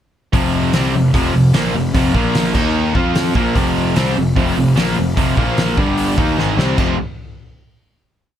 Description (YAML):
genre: punk rock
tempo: 149 BPM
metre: 4/4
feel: straight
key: F minor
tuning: A4 = 440 Hz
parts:
  - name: crunchy overdriven guitar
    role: riff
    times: 0.3-7.0 s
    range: F2 to F4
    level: -21 LUFS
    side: equal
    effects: none
  - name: sludgy distorted guitar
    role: riff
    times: 0.3-6.9 s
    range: F2 to F4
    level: -19 LUFS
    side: left 4 dB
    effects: overdrive
  - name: tight distorted guitar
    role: riff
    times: 0.3-7.0 s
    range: F2 to F4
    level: -21 LUFS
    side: right 8 dB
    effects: distortion
  - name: fuzz picked electric bass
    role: bass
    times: 0.3-7.0 s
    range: F1 to F2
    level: -21 LUFS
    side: equal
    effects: overdrive
  - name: loose indie drum kit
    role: drums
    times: 0.3-6.9 s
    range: crash cymbal, hi-hat, kick drum, snare drum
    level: -19 LUFS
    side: equal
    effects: none
room: light reverb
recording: none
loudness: -13 LUFS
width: side -10 dB against mid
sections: 0.3-6.8 riff; 6.8-8.4 final chord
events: drum fill 6.4-6.8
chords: 0.3 F5; 2.1 Bb5; 2.5 Eb5; 3.0 F5; 5.4 Bb5; 5.8 G5; 6.2 Abmaj9; 6.8 F5